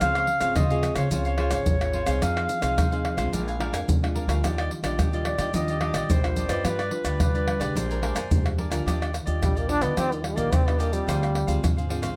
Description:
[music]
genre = samba and choro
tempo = 108 BPM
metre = 4/4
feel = straight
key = Eb major from 8.9 s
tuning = A4 = 440 Hz
[part]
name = warm clarinet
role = second line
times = 0.0-8.6 s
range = B4 to F5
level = -31 LUFS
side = equal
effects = none
[part]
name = cavaquinho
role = accompaniment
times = 0.0-12.2 s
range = D4 to Ab5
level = -36 LUFS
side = equal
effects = none
[part]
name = nylon-string guitar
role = accompaniment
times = 0.0-12.2 s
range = Ab2 to B4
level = -34 LUFS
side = equal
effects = none
[part]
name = upright bass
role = bass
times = 0.0-12.2 s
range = Ab1 to G3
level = -31 LUFS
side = equal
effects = none
[part]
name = maracas, surdo, pandeiro and tamborim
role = percussion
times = 0.0-12.2 s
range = none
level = -28 LUFS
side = equal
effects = none
[part]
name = bright trombone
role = melody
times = 9.4-11.8 s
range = Eb3 to D4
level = -30 LUFS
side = equal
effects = none
[sound]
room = light reverb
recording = none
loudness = -25 LUFS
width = mono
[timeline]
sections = 0.0-8.9 A section; 8.9-12.2 B section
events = clarinet solo 0.0-8.9; trombone solo 8.9-12.2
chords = 0.0 Dbmaj7; 2.2 Fm7; 3.3 Bb7; 4.4 Ebmaj9; 6.7 G7; 7.8 Bb13; 8.9 Ebmaj9; 11.1 Dm7b5

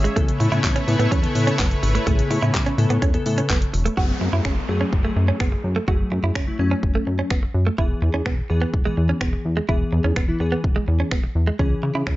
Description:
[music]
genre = dance-pop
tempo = 126 BPM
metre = 4/4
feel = straight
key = unclear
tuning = A4 = 440 Hz
[part]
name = lush unison pad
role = sustained chords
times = 0.0-3.9 s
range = C#3 to E5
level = -28 LUFS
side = equal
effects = chorus, sidechain pumping
[part]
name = direct-recorded clean electric guitar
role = riff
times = 0.0-12.1 s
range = G#3 to F#4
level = -27 LUFS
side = right 4 dB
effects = lush chorus
[part]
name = chorused synth bass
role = bass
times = 0.0-12.2 s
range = E1 to C#3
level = -22 LUFS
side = equal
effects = sidechain pumping
[part]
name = pop drum kit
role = drums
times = 0.1-12.2 s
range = finger snaps, handclaps, hi-hat, kick drum, shaker, snare drum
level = -22 LUFS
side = equal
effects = none
[part]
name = glassy digital keys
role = accompaniment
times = 0.2-12.1 s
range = C#3 to B4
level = -26 LUFS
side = left 2 dB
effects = chorus, sidechain pumping
[part]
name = downlifter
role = sound effects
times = 4.0-7.8 s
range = none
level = -33 LUFS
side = left 2 dB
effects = none
[sound]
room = little or no reverb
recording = nothing above 7.6 kHz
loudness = -18 LUFS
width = side -17 dB against mid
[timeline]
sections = 0.0-4.0 A section; 4.0-12.2 B section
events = hi-hats muted 9.7-11.6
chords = 0.2 Aadd9; 4.0 F#madd9; 7.8 E; 11.6 C#m

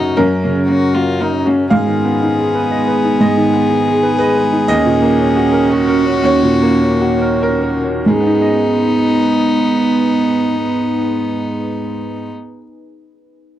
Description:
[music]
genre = neoclassical piano and strings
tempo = 90-122 BPM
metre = 3/4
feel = rubato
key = G# dorian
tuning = A4 = 441 Hz
[part]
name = warm violin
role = melody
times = 0.0-12.3 s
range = C#4 to G#4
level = -19 LUFS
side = left 5 dB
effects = none
[part]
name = clear grand piano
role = accompaniment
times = 0.0-12.6 s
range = D#2 to E#5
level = -15 LUFS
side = right 1 dB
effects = none
[part]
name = deep dark ambient pad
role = sustained chords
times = 0.0-12.3 s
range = C#4 to B4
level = -24 LUFS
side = left 3 dB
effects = none
[part]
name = clear cello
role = second line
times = 0.2-12.3 s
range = A#3 to C#4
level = -18 LUFS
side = right 4 dB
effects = none
[sound]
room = light reverb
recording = dry, close 1970s-style studio recording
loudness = -12 LUFS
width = side -12 dB against mid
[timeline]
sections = 0.0-1.7 A section; 1.7-8.1 B section; 8.1-12.0 C section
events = slowing down 3.9-8.1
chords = 0.0 F#; 1.7 G#m; 4.7 D#m7; 8.1 G#m

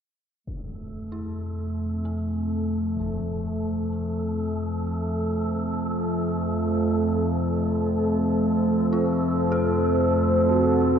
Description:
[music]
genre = dark ambient drone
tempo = 48 BPM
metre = 4/4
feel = straight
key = F major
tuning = A4 = 435 Hz
[part]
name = analog drone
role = drone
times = 0.7-11.0 s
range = F2 to A3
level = -24 LUFS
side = equal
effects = chorus
[part]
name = deep dark ambient pad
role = sustained chords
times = 1.4-11.0 s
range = C4 to A5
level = -28 LUFS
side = equal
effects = chorus, built-in reverb
[part]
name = impact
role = percussion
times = 0.5-3.2 s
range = none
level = -42 LUFS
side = left 1 dB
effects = none
[part]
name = wind-like tuned noise texture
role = texture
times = 0.9-11.0 s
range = A4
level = -35 LUFS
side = right 2 dB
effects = built-in reverb
[part]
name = dark detuned synth bell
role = arpeggios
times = 1.1-11.0 s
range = C4 to A4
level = -39 LUFS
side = right 2 dB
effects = chorus, phaser, tape echo
[part]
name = mellow horn-like synth lead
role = melody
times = 10.4-11.0 s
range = Gb4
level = -26 LUFS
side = equal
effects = lush chorus, cassette tape
[sound]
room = wet huge ambient reverb, RT60 7.8 s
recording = worn, warbling old tape, cassette tape, warbly pitch drift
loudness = -22 LUFS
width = side -8 dB against mid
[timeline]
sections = 0.5-11.0 A section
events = fade-in on synth texture 0.5-11.0; fade-in on synth bell 0.5-11.0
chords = 0.5 F

